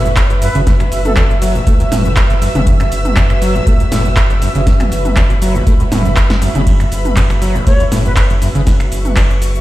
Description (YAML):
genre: acid house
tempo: 120 BPM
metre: 4/4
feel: swing 53% on 16ths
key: unclear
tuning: A4 = 444 Hz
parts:
  - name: warm analog pad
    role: sustained chords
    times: 0.0-9.6 s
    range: E5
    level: -24 LUFS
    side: right 5 dB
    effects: chorus, sidechain pumping
  - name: overdriven acid bass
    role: riff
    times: 0.0-8.6 s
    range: F#1 to A3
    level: -18 LUFS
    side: equal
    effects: distortion, wide subtle chorus, digital delay
  - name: saturated sub bass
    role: bass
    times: 0.0-9.6 s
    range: F#1 to C#2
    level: -17 LUFS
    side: equal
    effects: sidechain pumping
  - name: rich studio string section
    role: texture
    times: 0.0-9.6 s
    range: F#4 to E6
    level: -23 LUFS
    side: left 2 dB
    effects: sidechain pumping
  - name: electro analog drum machine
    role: drums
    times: 0.1-9.6 s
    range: finger snaps, handclaps, hi-hat, ride cymbal, shaker, snare drum, toms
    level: -19 LUFS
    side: right 1 dB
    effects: overdrive
  - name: electronic kick drum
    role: drums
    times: 0.2-9.3 s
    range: none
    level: -13 LUFS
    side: equal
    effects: overdrive
  - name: silver concert flute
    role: melody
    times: 0.4-1.3, 7.7-8.3 s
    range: A4 to C#5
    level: -24 LUFS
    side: left 1 dB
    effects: dub echo
room: light reverb, digital ambience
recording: played on a big sound system in a bare room, stone room reverb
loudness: -10 LUFS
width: side -16 dB against mid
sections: 0.0-9.6 A section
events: none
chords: 0.0 F#5